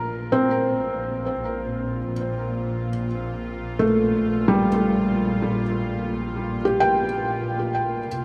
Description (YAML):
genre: ambient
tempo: free time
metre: none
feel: none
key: unclear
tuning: A4 = 440 Hz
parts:
  - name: felt-muted upright piano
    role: arpeggios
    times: 0.0-8.2 s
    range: G3 to G5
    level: -25 LUFS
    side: equal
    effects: delay
  - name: rich chamber double bass section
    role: bass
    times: 0.0-8.2 s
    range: Bb1 to C2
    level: -33 LUFS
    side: equal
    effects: none
  - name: bowed-like drone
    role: drone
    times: 0.0-8.2 s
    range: Bb2 to F4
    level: -34 LUFS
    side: equal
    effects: built-in reverb
room: wet huge ambient reverb, RT60 8.2 s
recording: none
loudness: -23 LUFS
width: mono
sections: 0.0-8.2 A section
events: fade-in on double bass section 0.0-8.2; fade-in on synth drone 0.0-8.2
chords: 0.0 Bb5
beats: free time